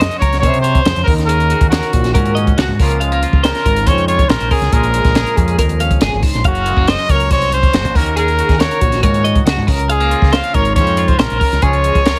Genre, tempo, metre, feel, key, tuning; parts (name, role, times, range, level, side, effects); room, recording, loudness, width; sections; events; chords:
math rock and midwest emo; 139 BPM; 4/4; straight; Db major; A4 = 440 Hz
clear trumpet; melody; 0.0-12.2 s; Gb4 to F5; -20 LUFS; equal
twangy electric guitar; accompaniment; 0.0-12.2 s; F2 to Ab4; -25 LUFS; equal; spring reverb
twelve-string electric guitar; arpeggios; 0.0-12.2 s; Gb4 to F5; -23 LUFS; equal; tremolo
growling fingered electric bass; bass; 0.0-12.1 s; F1 to C3; -20 LUFS; equal; overdrive
compact cocktail drum kit; drums; 0.0-12.2 s; hi-hat, kick drum, snare drum; -18 LUFS; equal
little or no reverb; heavily compressed radio sound; -14 LUFS; mono
0.0-12.2 A section
0.0 Gbmaj7; 1.1 Ebm7; 2.8 Db6; 4.7 Bbm7; 6.5 Gbmaj7; 8.0 Ebm7; 9.7 Db6